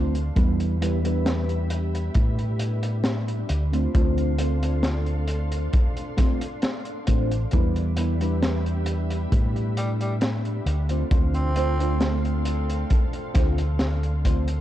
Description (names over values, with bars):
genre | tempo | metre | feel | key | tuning
vaporwave | 67 BPM | 4/4 | straight | D dorian | A4 = 440 Hz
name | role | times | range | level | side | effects
mellow FM electric piano | accompaniment | 0.0-14.5 s | G3 to C5 | -29 LUFS | right 1 dB | phaser, lush chorus, analog delay
soft string machine | sustained chords | 0.0-14.6 s | D4 to C6 | -35 LUFS | equal | ensemble chorus
mellow fretless electric bass | bass | 0.0-14.6 s | A1 to A2 | -24 LUFS | equal | none
crunchy breakbeat drum kit | drums | 0.1-14.6 s | hi-hat, snare drum | -30 LUFS | equal | vintage 12-bit sampler grit
kick drum | drums | 0.4-14.4 s | none | -22 LUFS | equal | vintage 12-bit sampler grit
raspy tenor saxophone | melody | 9.8-12.2 s | G3 to C4 | -34 LUFS | equal | tape echo
room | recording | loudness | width
small room ambience | dark, warm production | -21 LUFS | side -13 dB against mid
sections
0.0-14.6 A section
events
none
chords
0.4 Em7; 3.5 Dm7; 7.5 Em7; 10.7 Dm7